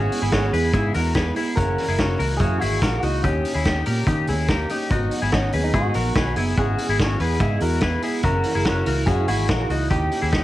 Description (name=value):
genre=jangly indie pop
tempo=144 BPM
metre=4/4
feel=straight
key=unclear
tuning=A4 = 437 Hz
part: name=electric guitar through a small old amp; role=melody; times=0.0-10.3 s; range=C#4 to A#4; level=-27 LUFS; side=right 1 dB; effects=cassette tape
part: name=picked steel-string acoustic guitar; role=accompaniment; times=0.0-10.4 s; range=F#2 to G4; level=-28 LUFS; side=right 4 dB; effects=cassette tape
part: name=twelve-string electric guitar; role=arpeggios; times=0.0-10.4 s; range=C#4 to B4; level=-25 LUFS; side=left 3 dB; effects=wide subtle chorus, cassette tape
part: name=vintage muted fingered electric bass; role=bass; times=0.0-10.4 s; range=F#1 to D#3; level=-24 LUFS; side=equal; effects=none
part: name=vintage drum kit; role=drums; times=0.1-10.4 s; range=hi-hat, kick drum, snare drum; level=-24 LUFS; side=equal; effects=cassette tape
room=moderate studio reverb, RT60 0.6 s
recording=home recording on cassette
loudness=-19 LUFS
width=side -15 dB against mid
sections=0.0-10.4 A section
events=none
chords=0.0 C#m7/G#; 1.6 F#7; 3.2 D#7; 4.9 G#m7; 6.6 C#m7/G#; 8.2 F#7; 9.9 D#7